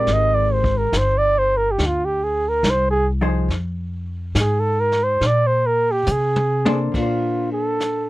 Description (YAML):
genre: jazz ballad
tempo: 70 BPM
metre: 4/4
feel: swing 66% on 8ths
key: unclear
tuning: A4 = 440 Hz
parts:
  - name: mellow flugelhorn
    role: melody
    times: 0.0-8.1 s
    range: F4 to Eb5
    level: -19 LUFS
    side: right 1 dB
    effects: none
  - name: vintage hollow-body jazz guitar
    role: accompaniment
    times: 0.0-8.1 s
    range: F3 to C5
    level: -24 LUFS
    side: left 2 dB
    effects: none
  - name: upright bass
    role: bass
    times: 0.0-8.1 s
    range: G1 to C3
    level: -22 LUFS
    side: equal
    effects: none
  - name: vintage brush drum kit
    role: drums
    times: 0.1-8.1 s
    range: brushed snare drum, hi-hat, kick drum, ride cymbal, snare drum, toms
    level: -25 LUFS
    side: equal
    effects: none
room: little or no reverb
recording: dry, close 1970s-style studio recording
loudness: -17 LUFS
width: side -18 dB against mid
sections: 0.0-6.9 A section; 6.9-8.1 B section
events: flugelhorn solo 0.0-6.9; drum fill 6.1-6.9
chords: 0.1 Abmaj9; 3.5 Fm; 5.2 Bbadd9; 6.9 Bbmaj9